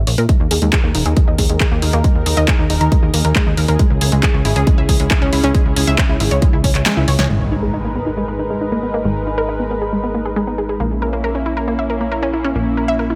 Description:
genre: uplifting trance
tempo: 137 BPM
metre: 4/4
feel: straight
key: G# minor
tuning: A4 = 440 Hz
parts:
  - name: plucky analog bass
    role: bass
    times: 0.0-13.2 s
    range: D#1 to A#2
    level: -21 LUFS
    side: equal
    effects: sidechain pumping
  - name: analog pluck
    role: arpeggios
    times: 0.1-13.2 s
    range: G#3 to E5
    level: -24 LUFS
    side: equal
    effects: chorus, sidechain pumping, tape echo
  - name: house drum kit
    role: drums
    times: 0.1-7.3 s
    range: handclaps, hi-hat, snare drum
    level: -23 LUFS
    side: equal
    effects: low-pass filter on hats, small room ambience, low-pass filter on snare
  - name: lush unison pad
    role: sustained chords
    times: 0.3-13.2 s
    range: C#3 to B4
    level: -25 LUFS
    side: equal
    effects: chorus, phaser, sidechain pumping
  - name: electronic kick drum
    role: drums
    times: 0.3-6.7 s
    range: none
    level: -17 LUFS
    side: equal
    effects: small room ambience
  - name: impact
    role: sound effects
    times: 7.3-9.0 s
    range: none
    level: -27 LUFS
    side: equal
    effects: none
room: light reverb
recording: none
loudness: -16 LUFS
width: mono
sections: 0.0-7.3 A section; 7.3-13.2 B section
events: filter sweep on synth arpeggio sound 0.0-7.3, 7.3-13.2; kick drops out 6.9-7.3; drum fill 6.9-7.3; impact 7.3-9.0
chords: 0.3 D#sus4; 3.8 C#m; 7.3 G#madd9; 10.8 A#dim

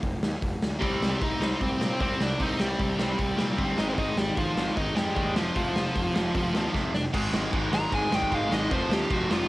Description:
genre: punk rock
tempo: 152 BPM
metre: 4/4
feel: straight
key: unclear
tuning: A4 = 441 Hz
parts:
  - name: fuzz picked electric bass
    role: bass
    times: 0.0-9.4 s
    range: F1 to Bb2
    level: -33 LUFS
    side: equal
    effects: overdrive
  - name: raw garage drum kit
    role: drums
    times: 0.0-9.4 s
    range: crash cymbal, hi-hat, kick drum, snare drum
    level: -29 LUFS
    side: equal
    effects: none
  - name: dark smooth lead guitar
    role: melody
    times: 0.8-9.5 s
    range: F3 to Bb5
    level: -29 LUFS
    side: equal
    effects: overdrive, cassette tape
  - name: distorted electric guitar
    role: riff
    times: 0.8-9.5 s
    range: F2 to C4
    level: -31 LUFS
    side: equal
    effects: overdrive, cassette tape
  - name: overdriven electric guitar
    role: riff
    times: 0.8-9.5 s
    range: F2 to C4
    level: -32 LUFS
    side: equal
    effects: cassette tape
room: studio ambience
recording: home recording on cassette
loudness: -24 LUFS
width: side -19 dB against mid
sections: 0.0-7.1 A section; 7.1-9.5 B section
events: drum fill 6.7-7.1; lead electric guitar solo 7.1-9.5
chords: 0.0 F5; 0.8 Cm; 3.8 Ab; 5.4 F5; 7.1 Ab5; 8.7 F5

